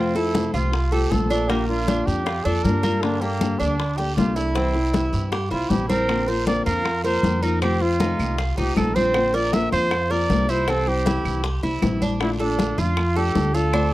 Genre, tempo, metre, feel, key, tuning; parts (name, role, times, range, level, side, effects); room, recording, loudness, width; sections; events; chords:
latin, Cuban son and guajira; 157 BPM; 4/4; straight; A4 = 435 Hz
breathy trumpet; melody; 0.0-13.9 s; Bb3 to E5; -25 LUFS; right 2 dB
nylon-string guitar; accompaniment; 0.0-13.9 s; C3 to A4; -26 LUFS; left 4 dB
Cuban tres; arpeggios; 0.0-13.9 s; Bb3 to Bb4; -27 LUFS; right 2 dB
upright bass; bass; 0.0-13.9 s; Bb1 to G2; -25 LUFS; equal
bongos; percussion; 0.2-13.9 s; -32 LUFS; left 6 dB
congas; percussion; 0.2-13.9 s; -26 LUFS; left 2 dB
guiro; percussion; 0.4-13.9 s; -39 LUFS; right 5 dB
claves; percussion; 6.1-13.9 s; -33 LUFS; right 6 dB
light reverb; dry, close 1970s-style studio recording; -19 LUFS; side -16 dB against mid
0.0-13.9 A section
0.0 F; 1.5 Bb; 3.0 Gmadd9; 4.6 C; 6.1 Bbadd9; 7.6 F7; 9.1 Bbadd9; 10.7 C; 12.2 Bbmaj7